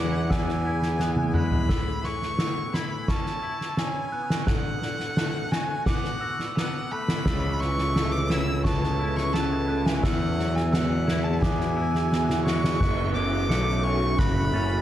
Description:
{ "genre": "post-rock", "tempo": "86 BPM", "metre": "4/4", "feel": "straight", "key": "A major", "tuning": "A4 = 440 Hz", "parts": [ { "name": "rich violin", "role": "melody", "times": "0.0-14.8 s", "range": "F#5 to E6", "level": "-31 LUFS", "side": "equal", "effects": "tape echo" }, { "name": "glassy FM pad", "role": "sustained chords", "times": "0.0-1.7, 7.7-14.8 s", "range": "B3 to F#5", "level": "-32 LUFS", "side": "equal", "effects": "ensemble chorus, built-in reverb" }, { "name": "glockenspiel with rubber mallets", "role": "arpeggios", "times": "0.0-14.8 s", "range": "C#6 to C#7", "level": "-36 LUFS", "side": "right 3 dB", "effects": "tape echo" }, { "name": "twangy electric guitar", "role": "arpeggios", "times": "0.0-14.8 s", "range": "E2 to F#4", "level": "-35 LUFS", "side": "left 3 dB", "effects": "ensemble chorus, tape echo" }, { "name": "fuzz picked electric bass", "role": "bass", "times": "0.0-1.7, 7.3-14.8 s", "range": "F#1 to E2", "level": "-26 LUFS", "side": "equal", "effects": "overdrive" }, { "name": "soft-mallet drum kit", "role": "drums", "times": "0.3-14.4 s", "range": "crash cymbal, kick drum, snare drum, toms", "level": "-27 LUFS", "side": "equal", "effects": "none" } ], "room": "light reverb", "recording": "none", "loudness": "-23 LUFS", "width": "side -12 dB against mid", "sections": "0.0-1.7 A section; 1.7-12.8 A section; 12.8-14.8 B section", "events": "drum fill 1.0-1.7, 12.1-12.8, 12.8-14.8; build-up 12.8-14.8", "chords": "0.0 Eadd9; 1.7 Aadd9; 4.5 D6; 7.3 Aadd9/C#; 10.0 Eadd9; 12.8 F#m7" }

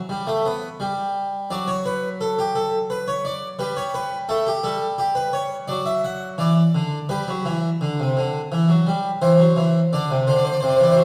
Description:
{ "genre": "classical, baroque-style two-part invention for harpsichord", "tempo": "86 BPM", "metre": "4/4", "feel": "straight", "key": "G major", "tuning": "A4 = 443 Hz", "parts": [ { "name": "harpsichord", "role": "solo", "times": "0.1-11.0 s", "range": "C3 to F#5", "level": "-21 LUFS", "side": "equal", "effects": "none" } ], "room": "wet recital hall reverb, RT60 1.4 s", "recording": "heard from further back in the room", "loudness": "-22 LUFS", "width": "mono", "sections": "0.0-7.1 A section; 7.1-11.0 B section", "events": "none", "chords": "0.0 N.C.; 1.5 D/F#; 2.9 G; 4.3 A7; 5.7 D/F#; 7.1 G; 8.5 C/E; 9.9 D7" }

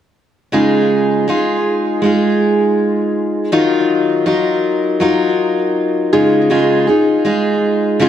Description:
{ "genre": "pop", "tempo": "80 BPM", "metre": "4/4", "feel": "straight", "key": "Db major", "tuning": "A4 = 440 Hz", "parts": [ { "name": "picked steel-string acoustic guitar", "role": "solo", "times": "0.5-8.1 s", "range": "Db3 to Bb4", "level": "-12 LUFS", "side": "equal", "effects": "ping-pong delay" } ], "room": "moderate scoring stage reverb, RT60 1.6 s", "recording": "none", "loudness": "-12 LUFS", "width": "side -10 dB against mid", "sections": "0.5-6.5 A section; 6.5-8.1 B section", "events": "none", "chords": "0.5 Dbadd9; 3.5 Ebmadd9; 6.1 Dbadd9" }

